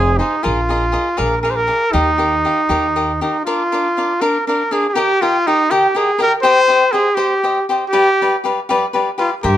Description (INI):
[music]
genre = mexican folk, mariachi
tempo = 80 BPM (dotted quarters)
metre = 6/8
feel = straight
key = Eb major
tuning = A4 = 436 Hz
[part]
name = clear trumpet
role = melody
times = 0.0-9.6 s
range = Eb4 to C5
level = -15 LUFS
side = equal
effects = plate reverb
[part]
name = cavaquinho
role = accompaniment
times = 0.0-9.6 s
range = D4 to Ab5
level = -19 LUFS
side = left 2 dB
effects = none
[part]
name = upright bass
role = bass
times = 0.0-3.2, 9.4-9.6 s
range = F1 to G2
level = -20 LUFS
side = equal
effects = none
[sound]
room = moderate studio reverb, RT60 0.6 s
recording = dark, warm production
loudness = -13 LUFS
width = side -12 dB against mid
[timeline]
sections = 0.0-3.5 A section; 3.5-9.6 A section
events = none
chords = 0.5 Bb7sus4; 1.2 Bb7; 1.9 Ebadd9; 3.5 Bb; 5.0 Eb; 6.4 Cm; 7.9 G7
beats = | 0.45 1.20 | 1.95 2.70 | 3.46 4.21 | 4.96 5.70 | 6.44 7.18 | 7.93 8.69 | 9.44